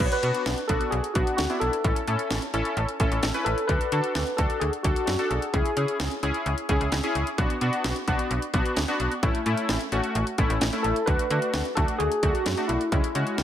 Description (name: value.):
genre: synth-pop.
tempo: 130 BPM.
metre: 4/4.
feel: straight.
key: unclear.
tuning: A4 = 444 Hz.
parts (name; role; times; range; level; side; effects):
bright tine electric piano; melody; 0.0-6.0, 10.8-13.4 s; E4 to C#5; -28 LUFS; left 1 dB; analog chorus, digital delay.
warm analog keys; accompaniment; 0.0-13.4 s; G#3 to B4; -28 LUFS; left 1 dB; chorus.
slap-like FM bass; bass; 0.0-13.4 s; A1 to D3; -28 LUFS; equal; none.
house drum kit; drums; 0.0-13.4 s; crash cymbal, hi-hat, kick drum, snare drum; -28 LUFS; equal; none.
room: light reverb, digital ambience.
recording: none.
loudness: -23 LUFS.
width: side -10 dB against mid.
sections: 0.0-13.4 A section.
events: none.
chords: 0.0 Bm; 1.8 A; 3.7 D; 5.5 C#m; 7.4 Bm; 9.2 A; 11.1 D; 12.9 C#m.